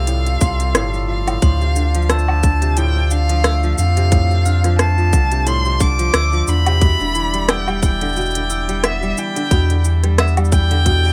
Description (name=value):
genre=folktronica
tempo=89 BPM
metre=4/4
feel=swing 56% on 16ths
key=unclear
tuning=A4 = 440 Hz
part: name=rich violin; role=melody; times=0.0-11.1 s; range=E5 to D6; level=-24 LUFS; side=equal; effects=digital delay
part: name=hand-pumped harmonium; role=sustained chords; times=0.0-11.1 s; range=G3 to D5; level=-33 LUFS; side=equal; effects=plate reverb
part: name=kora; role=arpeggios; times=0.0-11.1 s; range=A2 to B3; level=-27 LUFS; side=equal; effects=none
part: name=warm sub bass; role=bass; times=0.0-11.1 s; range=E1 to F2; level=-19 LUFS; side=equal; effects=none
part: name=organic electronic drum kit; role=drums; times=0.1-11.1 s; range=hi-hat, rim click, shaker, woodblock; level=-23 LUFS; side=equal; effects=overdrive
part: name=glockenspiel with brass mallets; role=second line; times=0.4-10.5 s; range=B5 to C7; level=-33 LUFS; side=equal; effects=delay, plate reverb
part: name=electronic kick drum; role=drums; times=0.4-11.0 s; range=none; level=-17 LUFS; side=equal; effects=overdrive
room=little or no reverb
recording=none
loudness=-16 LUFS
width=mono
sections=0.0-11.1 A section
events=none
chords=0.0 Fadd9; 1.4 Dm7; 6.8 Em7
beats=0.07 0.75 | 1.42 2.10 2.77 3.44 | 4.12 4.79 5.47 6.14 | 6.82 7.49 8.16 8.84 | 9.51 10.19 10.86